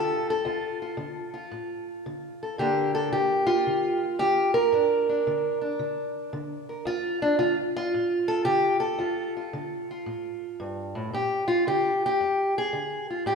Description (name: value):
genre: acoustic country blues, solo or duo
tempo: 112 BPM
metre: 4/4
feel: swing 66% on 8ths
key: D minor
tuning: A4 = 440 Hz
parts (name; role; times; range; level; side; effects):
- fingerpicked steel-string acoustic guitar; solo; 0.0-13.3 s; D2 to Bb4; -24 LUFS; equal; none
room: wet scoring stage reverb, RT60 1.9 s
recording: recorded in a church or concert hall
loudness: -24 LUFS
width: side -5 dB against mid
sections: 0.0-13.3 A section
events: none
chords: 0.0 Dm; 2.6 Gm; 6.9 Dm; 11.1 Bb7